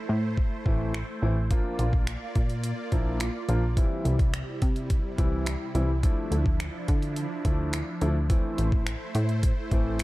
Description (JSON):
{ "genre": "dance-pop", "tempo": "106 BPM", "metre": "4/4", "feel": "straight", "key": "D minor", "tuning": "A4 = 440 Hz", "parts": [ { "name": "supersaw pad", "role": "sustained chords", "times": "0.0-10.0 s", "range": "C3 to D5", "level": "-36 LUFS", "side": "right 1 dB", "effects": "phaser, sidechain pumping" }, { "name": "plucky analog bass", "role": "bass", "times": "0.1-10.0 s", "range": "A1 to D3", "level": "-27 LUFS", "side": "equal", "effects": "sidechain pumping" }, { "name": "detuned 8-bit digital drum machine", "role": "drums", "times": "0.4-10.0 s", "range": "finger snaps, hi-hat, kick drum", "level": "-27 LUFS", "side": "equal", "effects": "none" }, { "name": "clear concert grand piano", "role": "accompaniment", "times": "0.7-10.0 s", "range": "E3 to F4", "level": "-32 LUFS", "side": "left 1 dB", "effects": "sidechain pumping" } ], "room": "little or no reverb", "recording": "dark, warm production", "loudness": "-24 LUFS", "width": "side -18 dB against mid", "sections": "0.0-10.0 A section", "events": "none", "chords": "0.0 Am; 1.5 Bb; 3.8 C; 6.0 Dmadd9; 8.3 Am" }